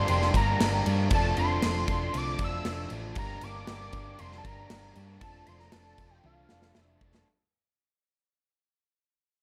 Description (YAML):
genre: indie rock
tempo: 117 BPM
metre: 4/4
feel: straight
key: unclear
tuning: A4 = 439 Hz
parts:
  - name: fat analog lead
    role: melody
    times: 0.0-7.0 s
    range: F5 to E6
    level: -35 LUFS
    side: equal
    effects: slapback echo, plate reverb
  - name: crunchy overdriven guitar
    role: riff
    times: 0.0-7.3 s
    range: F3 to D4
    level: -39 LUFS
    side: equal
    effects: none
  - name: overdriven electric guitar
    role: riff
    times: 0.0-7.3 s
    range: D3 to Bb4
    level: -40 LUFS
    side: equal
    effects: analog chorus, slapback echo
  - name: hollow-body short-scale picked electric bass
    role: bass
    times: 0.0-7.2 s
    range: F1 to G2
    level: -34 LUFS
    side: equal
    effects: none
  - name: big rock drum kit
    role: drums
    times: 0.1-7.3 s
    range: crash cymbal, kick drum, snare drum, toms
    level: -34 LUFS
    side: equal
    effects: none
room: light reverb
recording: dark, warm production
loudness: -28 LUFS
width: mono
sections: 0.0-7.3 A section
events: fade-out 0.0-7.3; drum fill 6.2-7.3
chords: 0.0 Gm7; 1.1 Dmadd9/F; 3.2 Gm; 5.2 Dm/F